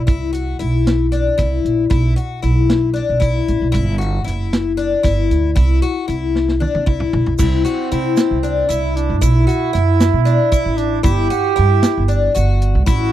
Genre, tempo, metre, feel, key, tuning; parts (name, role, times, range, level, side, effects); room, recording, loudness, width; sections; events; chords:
progressive instrumental, band music in an uneven meter; 230 BPM (eighths); 7/8; straight; C lydian; A4 = 440 Hz
upright bass; bass; 0.0-13.1 s; F#1 to C3; -17 LUFS; right 1 dB
picked twelve-string acoustic guitar; arpeggios; 0.1-13.1 s; D4 to F#4; -19 LUFS; left 6 dB
tight funk drum kit; drums; 0.1-13.0 s; crash cymbal, hi-hat, kick drum, snare drum, toms; -18 LUFS; right 1 dB
warm flugelhorn; second line; 7.4-13.1 s; C4 to G4; -21 LUFS; right 18 dB
egg shaker; percussion; 7.4-13.1 s; -33 LUFS; right 23 dB
little or no reverb; dry, close 1970s-style studio recording; -14 LUFS; side -12 dB against mid
0.0-7.4 A section; 7.4-13.1 B section
drum fill 6.3-7.4
0.1 Cmaj7; 1.9 Bm; 3.7 G5; 5.6 Cadd9; 7.4 C; 9.2 Bm7; 11.1 G5